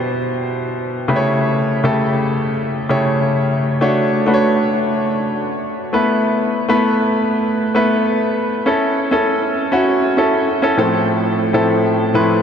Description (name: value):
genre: pop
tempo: 99 BPM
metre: 4/4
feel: straight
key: A mixolydian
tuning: A4 = 440 Hz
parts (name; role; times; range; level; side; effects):
- clear baby grand piano; solo; 0.0-12.4 s; A2 to C#5; -14 LUFS; equal; diffuse ambient delay
room: wet huge ambient reverb, RT60 7.4 s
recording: dreamy mix soaked in reverb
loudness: -14 LUFS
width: side -7 dB against mid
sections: 0.0-8.7 A section; 8.7-12.4 B section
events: none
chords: 0.0 Cmaj7; 1.1 A7/C#; 3.8 Dmaj7; 5.9 Esus4; 8.7 A; 10.8 Fmaj7/A